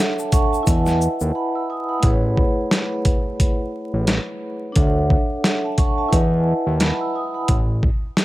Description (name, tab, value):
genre	hip hop, boom-bap hip-hop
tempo	88 BPM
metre	4/4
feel	swing 58% on 16ths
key	A major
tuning	A4 = 440 Hz
part	vibraphone with soft mallets	accompaniment	0.0-7.5 s	A3 to E6	-22 LUFS	right 1 dB	cassette tape, high-pass filter, low-pass filter
part	boom bap sampler-style drum kit	drums	0.0-8.2 s	hi-hat, kick drum, shaker, snare drum	-19 LUFS	equal	none
part	egg shaker	percussion	0.2-1.3 s	none	-36 LUFS	left 7 dB	none
part	fat analog bass	bass	0.7-7.9 s	A1 to E2	-20 LUFS	equal	none
room	little or no reverb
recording	vinyl crackle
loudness	-17 LUFS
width	side -16 dB against mid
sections	0.0-2.0 A section; 2.0-8.2 B section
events	break 1.4-2.0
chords	0.0 Dmaj9; 0.7 Emaj9; 2.0 Amaj9; 4.8 Dmaj9; 6.1 Emaj9; 7.5 N.C.